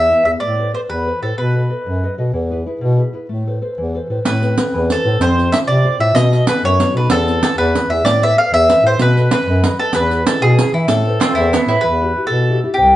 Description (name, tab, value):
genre	italian folk, Italian serenade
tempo	126 BPM (dotted quarters)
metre	6/8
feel	straight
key	A harmonic minor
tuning	A4 = 440 Hz
part	mandolin	melody	0.0-2.1, 4.3-13.0 s	E4 to F5	-16 LUFS	equal	none
part	nylon-string guitar	accompaniment	0.0-13.0 s	B2 to D#5	-22 LUFS	left 1 dB	none
part	mellow bass clarinet	bass	0.0-13.0 s	C2 to E3	-17 LUFS	equal	none
part	riq	percussion	4.3-11.7 s	none	-20 LUFS	right 3 dB	none
part	mandolin	second line	11.2-11.8 s	B3 to E4	-18 LUFS	right 4 dB	none
room	moderate stone room reverb, RT60 1.1 s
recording	band playing live in one room, nothing above 10.5 kHz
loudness	-13 LUFS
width	side -14 dB against mid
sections	0.0-4.3 A section; 4.3-11.8 A section; 11.8-13.0 B section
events	none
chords	0.4 Amadd9; 1.4 B7; 2.3 E; 3.3 Amadd9; 5.2 F; 6.2 B7; 7.1 Am/E; 7.6 E; 8.1 Amadd9; 9.0 B7; 9.9 E; 10.9 Amadd9; 11.8 Emadd9